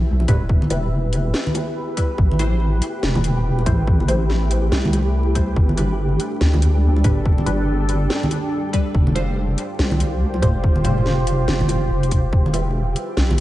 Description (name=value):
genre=deep dubstep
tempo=142 BPM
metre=4/4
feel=swing 61% on 16ths, half-time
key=E phrygian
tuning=A4 = 440 Hz
part: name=deep dark ambient pad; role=sustained chords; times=0.0-13.4 s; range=G3 to E5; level=-26 LUFS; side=equal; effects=chorus, built-in reverb
part: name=deep soft wobble bass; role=bass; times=0.0-13.4 s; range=E1 to D2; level=-19 LUFS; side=equal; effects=chorus, tube saturation
part: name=flickering grainy texture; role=texture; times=0.0-13.4 s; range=G4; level=-31 LUFS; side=right 1 dB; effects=built-in reverb, lush chorus
part: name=bongos and congas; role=percussion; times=0.2-13.4 s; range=none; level=-24 LUFS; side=right 1 dB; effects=dub echo
part: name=filtered dub chord stab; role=stabs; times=0.3-12.7 s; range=G3 to C5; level=-29 LUFS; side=left 2 dB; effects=phaser, lush chorus, dub echo
part: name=electronic kick drum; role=drums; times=0.3-12.4 s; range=none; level=-18 LUFS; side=equal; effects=none
part: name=garage drum kit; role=drums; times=0.3-13.4 s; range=hi-hat, snare drum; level=-26 LUFS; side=equal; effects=none
room=light reverb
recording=vinyl crackle, nothing above 11.0 kHz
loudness=-17 LUFS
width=side -15 dB against mid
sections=0.0-13.4 A section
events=none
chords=0.0 Em; 2.2 Am; 5.6 G; 8.9 Fsus2; 12.3 Em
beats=0.07 | 0.49 0.92 1.34 1.76 | 2.18 2.61 3.03 3.45 | 3.87 4.30 4.72 5.14 | 5.56 5.99 6.41 6.83 | 7.25 7.68 8.10 8.52 | 8.94 9.37 9.79 10.21 | 10.63 11.06 11.48 11.90 | 12.32 12.75 13.17